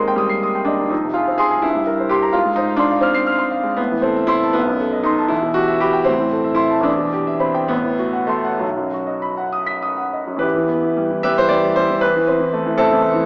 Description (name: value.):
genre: classical, romantic character piece for solo piano.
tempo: 63-88 BPM (dotted quarters).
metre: 6/8.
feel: rubato.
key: E minor from 3.8 s.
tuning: A4 = 440 Hz.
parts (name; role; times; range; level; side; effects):
bright baby grand piano; solo; 0.0-13.3 s; A1 to C7; -18 LUFS; equal; none.
room: wet scoring stage reverb, RT60 1.8 s.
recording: small speaker sound.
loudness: -18 LUFS.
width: mono.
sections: 0.0-10.4 A section; 10.4-13.3 B section.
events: none.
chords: 0.0 Cm/Eb; 0.9 Fm; 1.6 C7/G; 2.4 Fm/Ab; 3.8 Am; 4.6 B7b9; 5.3 Em; 6.1 Am; 6.9 Em; 7.7 F#dim/A; 8.6 B; 10.4 Em; 12.0 Am/E.